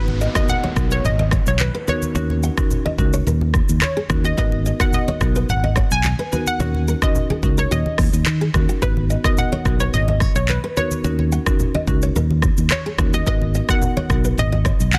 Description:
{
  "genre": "afrobeats",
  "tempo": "108 BPM",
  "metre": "4/4",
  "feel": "straight",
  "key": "G# minor",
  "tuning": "A4 = 440 Hz",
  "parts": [
    { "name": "analog pluck", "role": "melody", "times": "0.0-15.0 s", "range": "B4 to G#5", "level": "-28 LUFS", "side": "equal", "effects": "chorus, delay" },
    { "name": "marimba with medium hard mallets", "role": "accompaniment", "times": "0.0-14.4 s", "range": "B3 to B4", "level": "-30 LUFS", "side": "equal", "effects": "none" },
    { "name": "nylon-string guitar", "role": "riff", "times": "0.0-14.8 s", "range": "F#4 to F#5", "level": "-30 LUFS", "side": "equal", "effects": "none" },
    { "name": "fingered electric bass", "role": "bass", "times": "0.0-15.0 s", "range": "G#1 to D#3", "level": "-22 LUFS", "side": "equal", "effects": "none" },
    { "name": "downlifter", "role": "sound effects", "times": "0.0-4.4 s", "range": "none", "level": "-38 LUFS", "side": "equal", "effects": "none" },
    { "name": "congas", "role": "percussion", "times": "0.1-15.0 s", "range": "none", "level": "-29 LUFS", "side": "equal", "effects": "none" },
    { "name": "afro-pop drum kit", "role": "drums", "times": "0.2-15.0 s", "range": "handclaps, hi-hat, kick drum, rim click, shaker", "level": "-23 LUFS", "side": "equal", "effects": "soft clipping on snare" }
  ],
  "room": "little or no reverb",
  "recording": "dense, heavily limited modern master",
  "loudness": "-19 LUFS",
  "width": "mono",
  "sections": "0.0-15.0 A section",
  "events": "none",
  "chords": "0.0 G#m9; 2.2 D#m7; 4.4 G#m9; 6.6 D#m7; 8.8 G#m9; 11.0 D#m7; 13.3 G#m9"
}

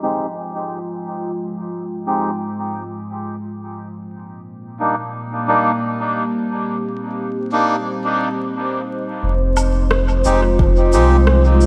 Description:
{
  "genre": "ambient dub",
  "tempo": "88 BPM",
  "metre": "4/4",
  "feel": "swing 58% on 16ths",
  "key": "F minor",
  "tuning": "A4 = 440 Hz",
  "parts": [
    { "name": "deep dark ambient pad", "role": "sustained chords", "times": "0.0-11.7 s", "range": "Ab3 to Eb5", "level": "-24 LUFS", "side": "equal", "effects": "chorus, built-in reverb" },
    { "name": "melodica", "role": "stabs", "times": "0.0-11.2 s", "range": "G3 to G4", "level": "-24 LUFS", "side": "equal", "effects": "dub echo" },
    { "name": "warm sub bass", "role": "bass", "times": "9.2-11.7 s", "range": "F1 to C2", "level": "-17 LUFS", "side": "equal", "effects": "tube saturation" },
    { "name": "electronic shaker, woodblock and rim click", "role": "drums", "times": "9.6-11.7 s", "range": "none", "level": "-27 LUFS", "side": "equal", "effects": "dub echo" },
    { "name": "electronic kick drum", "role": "drums", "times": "10.6-10.8 s", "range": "none", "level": "-18 LUFS", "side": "equal", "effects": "none" }
  ],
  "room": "moderate lush hall reverb, RT60 2.7 s",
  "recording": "dreamy mix soaked in reverb, vinyl crackle, low-pass filter",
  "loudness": "-19 LUFS",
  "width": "mono",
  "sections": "0.0-9.2 A section; 9.2-11.7 B section",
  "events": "filter sweep on ambient pad 0.0-9.2; filter sweep 0.0-9.2",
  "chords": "0.0 Fm7; 3.8 Cm7; 9.2 Fm7"
}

